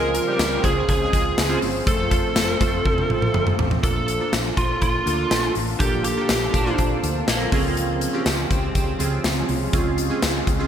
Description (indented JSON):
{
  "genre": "1980s-style pop",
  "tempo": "122 BPM",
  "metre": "4/4",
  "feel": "straight",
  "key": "unclear",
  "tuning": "A4 = 440 Hz",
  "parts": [
    { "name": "biting lead guitar", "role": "melody", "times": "0.0-6.7 s", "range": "F4 to Bb4", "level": "-24 LUFS", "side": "right 2 dB", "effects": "overdrive, shimmer reverb, digital delay" },
    { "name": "glassy digital keys", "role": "accompaniment", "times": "0.0-10.7 s", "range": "Bb2 to C5", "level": "-26 LUFS", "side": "right 2 dB", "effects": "chorus, shimmer reverb" },
    { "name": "shimmering ambient pad", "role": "sustained chords", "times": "0.0-10.7 s", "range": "Db3 to C5", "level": "-30 LUFS", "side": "left 1 dB", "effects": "chorus, built-in reverb, shimmer reverb" },
    { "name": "analog synth brass", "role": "stabs", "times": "0.0-1.2 s", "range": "G3 to Ab4", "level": "-30 LUFS", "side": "equal", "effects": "chorus, shimmer reverb" },
    { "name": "woody fretless electric bass", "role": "bass", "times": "0.0-10.7 s", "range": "F1 to D2", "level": "-27 LUFS", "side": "equal", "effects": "none" },
    { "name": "big rock drum kit", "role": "drums", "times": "0.1-10.6 s", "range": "hi-hat, kick drum, snare drum, tambourine, toms", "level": "-23 LUFS", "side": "equal", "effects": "gated reverb" },
    { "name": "electric guitar at the edge of break-up", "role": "second line", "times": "6.5-9.7 s", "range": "Bb3 to D4", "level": "-30 LUFS", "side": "right 1 dB", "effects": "ensemble chorus, shimmer reverb, digital delay" }
  ],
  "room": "moderate plate reverb, RT60 2.1 s",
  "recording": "bright 1980s-style digital production",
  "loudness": "-19 LUFS",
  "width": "side -9 dB against mid",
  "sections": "0.0-3.8 A section; 3.8-10.7 B section",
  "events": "drum fill 2.9-3.8",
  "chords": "0.0 Dbmaj7; 1.9 F; 3.8 Bbmaj7; 7.5 Dbmaj7",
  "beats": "0.39 0.88 1.38 | 1.87 2.36 2.85 3.34 | 3.83 4.33 4.82 5.31 | 5.80 6.29 6.79 7.28 | 7.77 8.26 8.75 9.24 | 9.74 10.23"
}